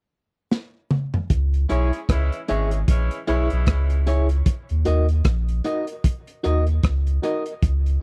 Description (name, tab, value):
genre	roots reggae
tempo	76 BPM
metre	4/4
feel	swing 59% on 16ths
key	C# dorian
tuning	A4 = 439 Hz
part	crunchy breakbeat drum kit	drums	0.5-8.0 s	hi-hat, kick drum, rim click, snare drum, toms	-23 LUFS	equal	none
part	soft dub sub bass	bass	1.3-8.0 s	G#1 to D#2	-22 LUFS	equal	none
part	clear horn section	second line	1.7-4.0 s	C#3 to G#4	-34 LUFS	equal	tube saturation, dub echo
part	electric guitar at the edge of break-up	accompaniment	1.7-7.4 s	E4 to D#5	-31 LUFS	equal	dub echo
part	reed electric piano	stabs	1.7-7.5 s	D#4 to E5	-28 LUFS	equal	fast tremolo
room	little or no reverb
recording	dry, close 1970s-style studio recording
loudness	-22 LUFS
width	mono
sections	0.0-1.3 A section; 1.3-8.0 B section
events	drum fill 0.5-1.3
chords	0.0 N.C.; 1.3 C#m; 4.5 D#m